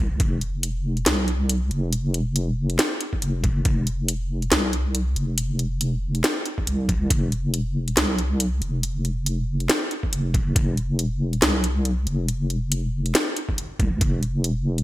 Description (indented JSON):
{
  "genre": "deep dubstep",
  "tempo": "139 BPM",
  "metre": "4/4",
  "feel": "swing 57% on 16ths, half-time",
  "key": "unclear",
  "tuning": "A4 = 436 Hz",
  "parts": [
    { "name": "deep soft wobble bass", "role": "bass", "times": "0.0-14.8 s", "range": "F1 to C2", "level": "-23 LUFS", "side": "equal", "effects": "chorus" },
    { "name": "electronic kick drum", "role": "drums", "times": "0.2-0.3, 3.1-3.8, 6.6-7.2, 10.0-10.7, 13.5-14.1 s", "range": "none", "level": "-23 LUFS", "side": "equal", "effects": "overdrive, studio reverb" },
    { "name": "garage drum kit", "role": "drums", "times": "0.2-14.8 s", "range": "handclaps, hi-hat, snare drum", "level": "-22 LUFS", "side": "equal", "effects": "studio reverb, gated reverb" }
  ],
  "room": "digital ambience",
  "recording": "bright 1980s-style digital production",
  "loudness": "-21 LUFS",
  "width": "side -16 dB against mid",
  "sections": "0.0-14.8 A section",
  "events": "none",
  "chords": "none",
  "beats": "| 0.20 0.63 1.06 1.49 | 1.93 2.36 2.79 3.22 | 3.65 4.08 4.51 4.95 | 5.38 5.81 6.24 6.67 | 7.11 7.54 7.97 8.40 | 8.83 9.26 9.70 10.13 | 10.56 10.99 11.42 11.85 | 12.28 12.72 13.15 13.58 | 14.01 14.44"
}